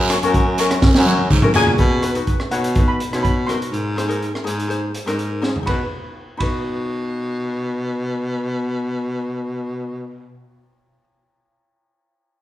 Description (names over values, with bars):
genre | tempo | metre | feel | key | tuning
calypso | 123 BPM | 4/4 | straight | B major | A4 = 439 Hz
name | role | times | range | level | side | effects
steel pan | melody | 0.0-11.0 s | F#5 to C6 | -25 LUFS | left 1 dB | none
breathy baritone saxophone | bass | 0.0-10.3 s | F#2 to B2 | -22 LUFS | left 1 dB | none
ukulele | accompaniment | 0.1-11.0 s | C#4 to C#5 | -24 LUFS | left 2 dB | none
crunchy breakbeat drum kit | drums | 0.1-6.5 s | hi-hat, kick drum, ride cymbal, rim click, snare drum, toms | -19 LUFS | equal | none
guiro | percussion | 0.1-1.7 s | none | -26 LUFS | right 5 dB | none
room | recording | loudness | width
wet recital hall reverb, RT60 1.6 s | recorded in a church or concert hall | -17 LUFS | side -14 dB against mid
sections
0.0-1.8 A section; 1.8-5.7 B section; 5.7-9.6 C section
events
drum fill 0.8-1.8, 5.4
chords
0.0 F#; 1.8 B; 3.7 G#; 5.7 B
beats
0.34 0.82 1.30 | 1.79 2.27 2.75 3.24 | 3.72 4.21 4.70 5.18 | 5.67 6.16 6.64 7.13 | 7.62 8.11 8.59 9.08